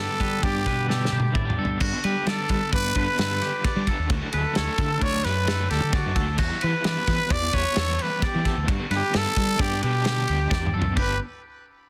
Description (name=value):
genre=math rock and midwest emo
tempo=131 BPM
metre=5/4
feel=straight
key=G major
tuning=A4 = 439 Hz
part: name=growling trumpet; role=melody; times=0.0-11.2 s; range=F#4 to D5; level=-30 LUFS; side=equal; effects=none
part: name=twelve-string electric guitar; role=accompaniment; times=0.0-4.1 s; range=G2 to G4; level=-37 LUFS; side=equal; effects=warbly pitch drift
part: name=twangy electric guitar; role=arpeggios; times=0.0-11.2 s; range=F#4 to D5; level=-34 LUFS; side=equal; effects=digital delay
part: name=crunchy overdriven guitar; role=riff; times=0.0-11.2 s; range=G2 to E4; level=-35 LUFS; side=equal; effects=tremolo
part: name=growling fingered electric bass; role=bass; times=0.0-11.2 s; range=G1 to G3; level=-29 LUFS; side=equal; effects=overdrive
part: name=loose indie drum kit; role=drums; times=0.2-11.1 s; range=crash cymbal, kick drum, ride cymbal, snare drum, toms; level=-29 LUFS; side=equal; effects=none
room=little or no reverb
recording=dense, heavily limited modern master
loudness=-24 LUFS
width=mono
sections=0.0-1.8 A section; 1.8-11.0 B section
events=drum fill 0.9-1.8, 10.5-11.0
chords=0.0 G; 4.1 D; 6.4 Em11; 11.0 G